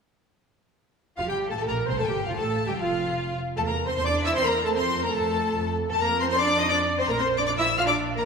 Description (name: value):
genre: quick classical-period movement for string orchestra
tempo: 153 BPM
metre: 3/4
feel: straight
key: F major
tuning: A4 = 440 Hz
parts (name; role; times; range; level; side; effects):
- rich chamber violin section; melody; 1.2-8.2 s; F5 to F6; -27 LUFS; left 6 dB; none
- rich symphonic violin section; second line; 1.2-8.3 s; F4 to F5; -29 LUFS; equal; none
- rich chamber viola section; accompaniment; 1.2-8.3 s; F4 to F5; -28 LUFS; right 3 dB; none
- rich chamber double bass section; bass; 1.2-8.2 s; F1 to F2; -31 LUFS; right 3 dB; none
- rich studio cello section; bass; 1.2-8.2 s; F3 to F4; -32 LUFS; right 1 dB; none
room: wet concert hall reverb, RT60 1.9 s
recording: recorded in a church or concert hall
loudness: -22 LUFS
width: side -5 dB against mid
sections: 1.2-8.3 A section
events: none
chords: 1.2 F; 2.4 Fadd9; 3.6 C7/E; 4.7 F; 5.9 F7(no3); 7.1 Bb